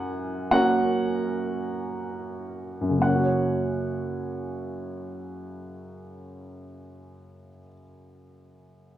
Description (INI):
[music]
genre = classical, lyrical solo piano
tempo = free time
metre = none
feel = none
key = F# major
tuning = A4 = 440 Hz
[part]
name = clear upright piano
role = solo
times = 0.0-9.0 s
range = F#2 to G#5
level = -25 LUFS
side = right 1 dB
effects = none
[sound]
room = moderate concert hall reverb, RT60 1.8 s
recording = dark, warm production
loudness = -24 LUFS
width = side -12 dB against mid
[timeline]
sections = 0.0-3.0 A section; 3.0-8.6 B section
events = slowing down 0.0-3.0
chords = 0.0 F#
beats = free time